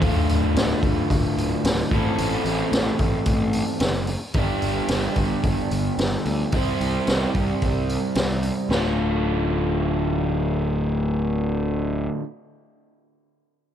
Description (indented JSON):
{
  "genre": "classic rock",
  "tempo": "110 BPM",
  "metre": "4/4",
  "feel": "straight",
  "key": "D dorian",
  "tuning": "A4 = 440 Hz",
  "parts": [
    { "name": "crunchy overdriven guitar", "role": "riff", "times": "0.0-12.2 s", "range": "D2 to C5", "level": "-24 LUFS", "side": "equal", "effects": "none" },
    { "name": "fuzz picked electric bass", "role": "bass", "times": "0.0-12.1 s", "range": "D1 to D2", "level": "-26 LUFS", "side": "equal", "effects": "overdrive" },
    { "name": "raw garage drum kit", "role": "drums", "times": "0.0-8.8 s", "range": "hi-hat, kick drum, snare drum", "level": "-24 LUFS", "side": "equal", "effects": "none" }
  ],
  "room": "studio ambience",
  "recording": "none",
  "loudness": "-20 LUFS",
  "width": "side -10 dB against mid",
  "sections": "0.0-8.7 A section; 8.7-13.0 B section",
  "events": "none",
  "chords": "0.0 Dm; 1.9 Am; 4.4 G; 6.5 C; 8.7 Dm"
}